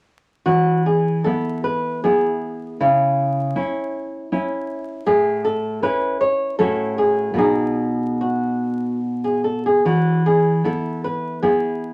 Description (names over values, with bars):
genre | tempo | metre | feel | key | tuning
romantic duo for nylon-string guitar and classical guitar | 72-80 BPM | 3/4 | rubato | E major | A4 = 435 Hz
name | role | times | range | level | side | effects
flamenco guitar | melody | 0.5-11.9 s | E4 to C#5 | -22 LUFS | equal | none
nylon-string guitar | accompaniment | 0.5-11.9 s | A2 to F#4 | -24 LUFS | equal | none
room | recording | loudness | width
moderate studio reverb, RT60 0.5 s | vinyl crackle | -20 LUFS | mono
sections
0.5-11.9 A section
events
none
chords
0.5 E; 2.8 C#m; 5.1 A; 6.6 F#m/A; 7.4 B; 9.9 E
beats
| 0.46 1.25 2.04 | 2.80 3.55 4.30 | 5.06 5.82 6.58 | 7.37 8.20 9.02 | 9.85 10.65 11.42